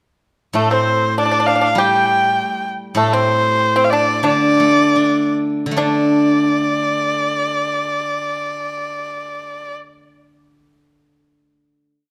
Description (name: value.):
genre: chinese traditional, Chinese chamber ensemble.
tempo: 68-100 BPM.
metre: 2/4.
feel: straight.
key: unclear.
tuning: A4 = 440 Hz.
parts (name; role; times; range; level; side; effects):
steel-string zither; accompaniment; 0.5-12.1 s; A2 to D4; -21 LUFS; equal; none.
warm erhu; melody; 0.6-9.7 s; A4 to G5; -20 LUFS; equal; none.
pipa; second line; 0.6-9.7 s; A3 to G4; -22 LUFS; equal; none.
room: wet recital hall reverb, RT60 1.5 s.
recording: none.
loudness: -17 LUFS.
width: mono.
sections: 0.5-5.8 A section; 5.8-9.3 final chord.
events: slowing down 3.0-5.8.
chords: none.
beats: | 0.55 1.17 | 1.77 2.38 | 2.98 3.59 | 4.25 4.96 | 5.78 6.67 | 7.54 8.40.